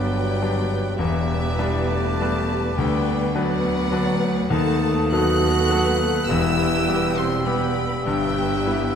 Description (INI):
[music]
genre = classical, romantic movement for piano and orchestra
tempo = 103 BPM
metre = 3/4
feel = rubato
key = B minor, E minor from 4.5 s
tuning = A4 = 441 Hz
[part]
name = clear concert grand piano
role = melody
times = 0.0-9.0 s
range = E1 to B4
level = -23 LUFS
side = left 2 dB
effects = none
[part]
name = warm studio violin section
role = melody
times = 0.0-8.9 s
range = E5 to F#6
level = -30 LUFS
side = equal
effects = none
[part]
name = mellow hollow silver concert flute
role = second line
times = 0.0-9.0 s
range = D6 to E6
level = -32 LUFS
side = left 1 dB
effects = none
[part]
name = rich studio violin section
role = second line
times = 0.0-9.0 s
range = B4 to G5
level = -33 LUFS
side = left 2 dB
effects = none
[part]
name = warm clarinet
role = second line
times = 0.0-9.0 s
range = B4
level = -34 LUFS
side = equal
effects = none
[part]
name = dark bassoon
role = accompaniment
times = 0.0-9.0 s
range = F#3 to B3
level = -30 LUFS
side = right 3 dB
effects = none
[part]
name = warm studio viola section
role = accompaniment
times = 0.0-9.0 s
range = B3 to B4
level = -31 LUFS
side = right 2 dB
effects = none
[part]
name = warm French horn section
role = sustained chords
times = 0.0-8.9 s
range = E3 to F#4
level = -27 LUFS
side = left 1 dB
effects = none
[part]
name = rich studio cello section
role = bass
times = 0.0-9.0 s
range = D2 to G2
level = -31 LUFS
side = right 3 dB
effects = none
[part]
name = warm studio double bass section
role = bass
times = 0.0-9.0 s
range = E1 to D#2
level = -29 LUFS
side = right 4 dB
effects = none
[sound]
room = wet concert hall reverb, RT60 2.1 s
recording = none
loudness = -19 LUFS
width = side -7 dB against mid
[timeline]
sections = 0.0-9.0 A section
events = none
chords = 0.0 Gmaj7; 1.0 Em7; 2.8 Bm/D; 4.5 B7/D#; 6.3 Em; 8.0 Em/G